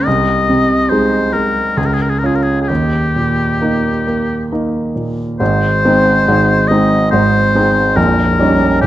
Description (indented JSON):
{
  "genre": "classical, romantic duo for oboe and grand piano",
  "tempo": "68 BPM",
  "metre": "3/4",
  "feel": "uneven beats, rubato",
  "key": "Ab major",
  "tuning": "A4 = 439 Hz",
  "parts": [
    { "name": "clear oboe", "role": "melody", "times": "0.0-8.9 s", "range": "G4 to Eb5", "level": "-16 LUFS", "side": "left 2 dB", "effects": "none" },
    { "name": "clear concert grand piano", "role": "accompaniment", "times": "0.0-8.9 s", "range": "Bb0 to Ab4", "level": "-13 LUFS", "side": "right 1 dB", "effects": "none" }
  ],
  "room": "moderate recital hall reverb, RT60 1.6 s",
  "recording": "dark, warm production",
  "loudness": "-11 LUFS",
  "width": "side -13 dB against mid",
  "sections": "0.0-5.4 A section; 5.4-8.9 B section",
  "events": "none",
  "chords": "0.1 Ab/C; 1.8 Db6; 2.7 Eb; 5.4 Ab; 8.0 Eb7/Bb"
}